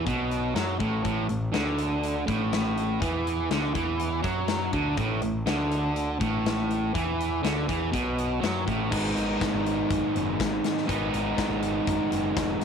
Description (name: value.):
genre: indie rock.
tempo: 122 BPM.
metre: 4/4.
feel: straight.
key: unclear.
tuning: A4 = 439 Hz.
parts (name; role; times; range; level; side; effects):
distorted electric guitar; riff; 0.0-12.6 s; G#2 to B4; -26 LUFS; right 1 dB; distortion.
growling picked electric bass; bass; 0.0-12.6 s; F1 to F#2; -32 LUFS; equal; overdrive.
big rock drum kit; drums; 0.1-12.6 s; crash cymbal, hi-hat, kick drum, snare drum; -32 LUFS; left 5 dB; none.
room: moderate spring reverb, RT60 2.0 s, small room ambience.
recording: 1960s-style stereo.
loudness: -24 LUFS.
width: side -7 dB against mid.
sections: 0.0-8.9 A section; 8.9-12.6 B section.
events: none.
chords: 0.0 A5; 8.9 G#m7.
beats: 0.07 0.56 | 1.05 1.54 2.03 2.52 | 3.01 3.50 3.99 4.48 | 4.98 5.47 5.96 6.45 | 6.94 7.44 7.93 8.42 | 8.91 9.41 9.90 10.39 | 10.88 11.38 11.87 12.36.